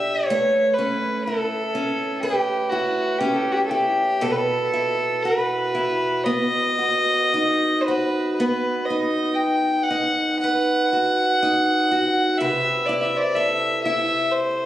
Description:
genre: celtic folk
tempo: 59 BPM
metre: 4/4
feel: uneven beats, rubato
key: unclear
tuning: A4 = 440 Hz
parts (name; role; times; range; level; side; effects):
- warm fiddle; melody; 0.0-14.7 s; F#4 to G5; -21 LUFS; equal; none
- picked steel-string acoustic guitar; accompaniment; 0.0-14.7 s; B2 to B4; -24 LUFS; right 1 dB; none
room: moderate concert hall reverb, RT60 2.3 s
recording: recorded on a phone in the room, club reverb, compression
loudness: -19 LUFS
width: side -13 dB against mid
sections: 0.0-14.7 A section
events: none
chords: 0.3 Aadd9; 4.2 Bsus4; 6.3 B; 12.4 Amadd9/C

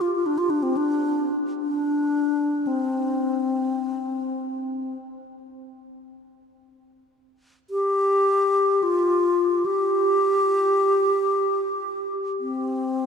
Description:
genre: world meditative, free-time meditation music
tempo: free time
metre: none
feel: none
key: unclear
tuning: A4 = 440 Hz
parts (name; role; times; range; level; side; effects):
- bright bass flute; solo; 0.0-13.1 s; C4 to G4; -21 LUFS; left 1 dB; none
room: wet huge ambient reverb, RT60 4.7 s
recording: dark, warm production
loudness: -20 LUFS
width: side -6 dB against mid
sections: 0.0-13.1 A section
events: none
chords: none

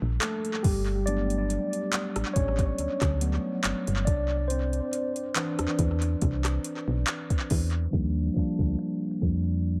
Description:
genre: contemporary R&B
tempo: 70 BPM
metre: 4/4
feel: swing 54% on 16ths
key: C lydian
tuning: A4 = 438 Hz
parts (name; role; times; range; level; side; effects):
- mellow tine electric piano; accompaniment; 0.0-9.8 s; E3 to D5; -32 LUFS; equal; phaser, tape echo
- solid FM bass; bass; 0.0-9.8 s; G1 to F2; -30 LUFS; equal; none
- smooth R&B drum kit; drums; 0.2-9.8 s; finger snaps, handclaps, hi-hat, kick drum, rim click; -31 LUFS; equal; tape echo
room: light reverb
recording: echo-heavy mix, low-pass filter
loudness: -28 LUFS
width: mono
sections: 0.0-7.9 A section; 7.9-9.8 B section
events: tine electric piano solo 0.0-7.9; filter sweep 7.9-9.8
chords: 0.0 Ebmaj9 (rootless); 0.6 Gmaj9; 4.1 Cmaj9; 7.9 Ebmaj9

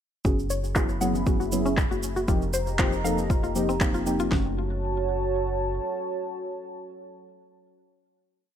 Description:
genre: deep house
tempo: 118 BPM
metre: 4/4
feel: swing 54% on 16ths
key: F# dorian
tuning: A4 = 440 Hz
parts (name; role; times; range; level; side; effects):
- dark analog pad; sustained chords; 0.2-8.5 s; F#4 to B5; -32 LUFS; right 2 dB; chorus, sidechain pumping
- mallet-like synth pluck; arpeggios; 0.2-4.6 s; C4 to F#5; -32 LUFS; left 3 dB; chorus, sidechain pumping, ping-pong delay
- deep mellow chord stab; stabs; 0.2-8.5 s; F3 to A4; -28 LUFS; equal; chorus, sidechain pumping, ping-pong delay
- organ-like FM bass; bass; 0.2-5.8 s; F1 to F#1; -31 LUFS; equal; sidechain pumping
- deep house drum kit; drums; 0.2-4.4 s; kick drum, snare drum; -25 LUFS; equal; studio ambience
- cabasa; percussion; 0.2-4.3 s; none; -38 LUFS; right 5 dB; none
- electronic handclaps; drums; 0.8-3.9 s; none; -31 LUFS; equal; low-pass filter on snare, studio ambience
- congas; percussion; 1.0-4.3 s; none; -39 LUFS; left 4 dB; none
room: light reverb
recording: none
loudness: -23 LUFS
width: side -9 dB against mid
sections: 0.2-4.3 breakdown; 4.3-8.4 final chord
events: filter sweep on drum 0.2-4.3; filter sweep on synth arpeggio sound 0.2-4.3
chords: 0.2 F#9sus4; 2.3 F9sus4; 4.3 F#m

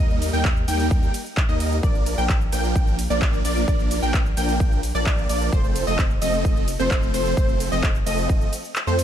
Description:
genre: EDM, festival progressive house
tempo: 130 BPM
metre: 4/4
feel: straight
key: Bb major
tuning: A4 = 439 Hz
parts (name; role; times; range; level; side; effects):
- plucky unison lead; arpeggios; 0.0-9.0 s; C5 to G5; -28 LUFS; equal; ensemble chorus, sidechain pumping, ping-pong delay
- supersaw chords; riff; 0.0-9.0 s; F3 to G5; -26 LUFS; right 1 dB; phaser, sidechain pumping, ping-pong delay
- saturated sub bass; bass; 0.0-9.0 s; F1 to F2; -26 LUFS; equal; sidechain pumping
- big-room dance drum kit; drums; 0.1-9.0 s; handclaps, hi-hat, ride cymbal, shaker; -30 LUFS; equal; overdrive
- electronic kick drum; drums; 0.4-8.4 s; none; -21 LUFS; equal; none
room: little or no reverb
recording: dark, warm production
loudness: -19 LUFS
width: side -10 dB against mid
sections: 0.0-9.0 A section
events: kick drops out 8.8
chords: 0.0 Eb; 1.8 Bb; 5.5 F

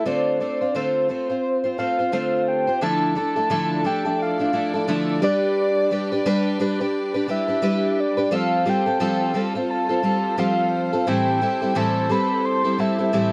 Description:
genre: acoustic pop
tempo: 87 BPM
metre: 4/4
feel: swing 60% on 16ths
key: unclear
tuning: A4 = 440 Hz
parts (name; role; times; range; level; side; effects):
- soft octave-layered synth lead; melody; 0.0-13.3 s; C5 to C6; -26 LUFS; equal; chorus
- fingerpicked twelve-string acoustic guitar; accompaniment; 0.0-13.3 s; A2 to C5; -24 LUFS; equal; none
- warm studio string section; sustained chords; 2.8-13.3 s; F3 to D5; -34 LUFS; equal; none
room: light reverb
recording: cassette tape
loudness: -22 LUFS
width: mono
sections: 0.0-2.8 A section; 2.8-13.3 B section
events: none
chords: 0.1 Dm7; 2.8 Dmadd9; 5.2 G; 8.3 Fadd9; 11.1 Am7

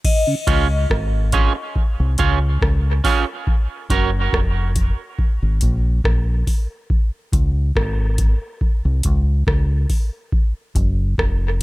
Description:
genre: dub reggae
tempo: 70 BPM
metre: 4/4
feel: straight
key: Db major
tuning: A4 = 444 Hz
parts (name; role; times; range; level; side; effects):
- booming analog drum machine; drums; 0.0-11.6 s; crash cymbal, hi-hat, kick drum, rim click; -19 LUFS; equal; none
- vibraphone with medium hard mallets; melody; 0.1-0.7 s; Eb5; -24 LUFS; left 3 dB; dub echo
- electric guitar at the edge of break-up; accompaniment; 0.5-4.1 s; Db4 to Db5; -23 LUFS; right 7 dB; dub echo
- deep dub fingered electric bass; bass; 0.5-11.6 s; F1 to Db2; -18 LUFS; equal; none
room: digital ambience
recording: none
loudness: -16 LUFS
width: side -19 dB against mid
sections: 0.0-11.6 A section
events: break 0.0-11.6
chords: 0.0 Db; 3.5 Gb; 6.9 Db5; 10.3 N.C.

